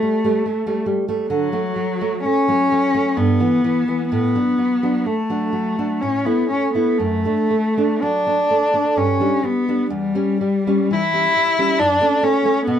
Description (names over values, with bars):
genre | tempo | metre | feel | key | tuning
romantic duo for cello and classical guitar | 63 BPM | 3/4 | uneven beats, rubato | D major | A4 = 440 Hz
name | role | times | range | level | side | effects
clear cello | melody | 0.0-12.8 s | F#3 to E4 | -18 LUFS | left 2 dB | none
nylon-string guitar | accompaniment | 0.0-12.8 s | E2 to E4 | -21 LUFS | right 3 dB | none
room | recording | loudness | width
light reverb | band playing live in one room | -16 LUFS | side -9 dB against mid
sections
0.0-12.8 A section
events
none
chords
0.0 A7(no3); 1.3 D (rootless); 3.2 Em/G; 4.1 D/A; 6.0 A5; 7.0 D/F#; 9.0 G; 9.9 C#dim/E; 11.8 F#m